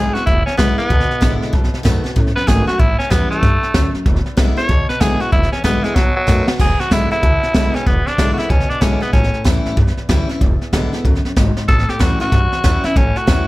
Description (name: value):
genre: rockabilly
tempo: 189 BPM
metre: 4/4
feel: swing 63% on 8ths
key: E mixolydian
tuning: A4 = 439 Hz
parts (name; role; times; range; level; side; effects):
- raspy tenor saxophone; melody; 0.0-9.4, 11.7-13.5 s; F#3 to C#5; -19 LUFS; equal; none
- picked steel-string acoustic guitar; accompaniment; 0.0-13.5 s; E2 to F#4; -22 LUFS; left 2 dB; none
- upright bass; bass; 0.0-13.5 s; E1 to A2; -19 LUFS; equal; none
- jazz brush drum kit; drums; 0.2-13.4 s; crash cymbal, hi-hat, kick drum, snare drum; -16 LUFS; equal; none
room: light reverb, small room ambience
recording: none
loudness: -13 LUFS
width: side -19 dB against mid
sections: 0.0-6.6 A section; 6.6-13.5 B section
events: tenor saxophone solo 0.0-6.6; drum fill 6.0-6.6, 11.5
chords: 0.0 E7; 1.5 B7; 2.8 A7; 4.1 E7; 6.0 B7; 6.6 E7; 9.1 A7; 10.4 E7; 11.7 A7